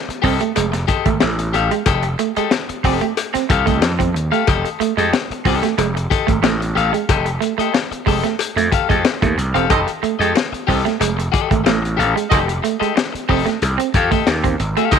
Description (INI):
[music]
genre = funk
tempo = 92 BPM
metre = 4/4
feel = straight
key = F mixolydian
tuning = A4 = 441 Hz
[part]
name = electric guitar at the edge of break-up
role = accompaniment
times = 0.1-15.0 s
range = G4 to F5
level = -22 LUFS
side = left 11 dB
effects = spring reverb
[part]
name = gritty slap bass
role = bass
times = 0.1-15.0 s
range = E1 to F2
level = -20 LUFS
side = right 1 dB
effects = overdrive
[part]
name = crunchy breakbeat drum kit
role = drums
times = 0.1-15.0 s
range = hi-hat, kick drum, snare drum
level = -20 LUFS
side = left 3 dB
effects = none
[part]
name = electric guitar at the edge of break-up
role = riff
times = 0.2-14.9 s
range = Ab3 to C4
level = -22 LUFS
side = right 15 dB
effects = none
[part]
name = cowbell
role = percussion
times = 0.6-15.0 s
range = none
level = -26 LUFS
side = left 10 dB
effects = none
[part]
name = clear horn section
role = second line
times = 9.7-15.0 s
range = Eb4 to Eb5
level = -21 LUFS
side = right 13 dB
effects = none
[sound]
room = light reverb, small room ambience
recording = 1960s-style stereo with parts hard left and right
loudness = -15 LUFS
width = side -7 dB against mid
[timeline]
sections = 0.0-15.0 A section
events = none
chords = 0.0 F9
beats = 0.57 1.22 | 1.87 2.52 3.17 3.83 | 4.48 5.13 5.78 6.44 | 7.09 7.74 8.39 9.05 | 9.70 10.35 11.01 11.66 | 12.31 12.96 13.62 14.27 | 14.92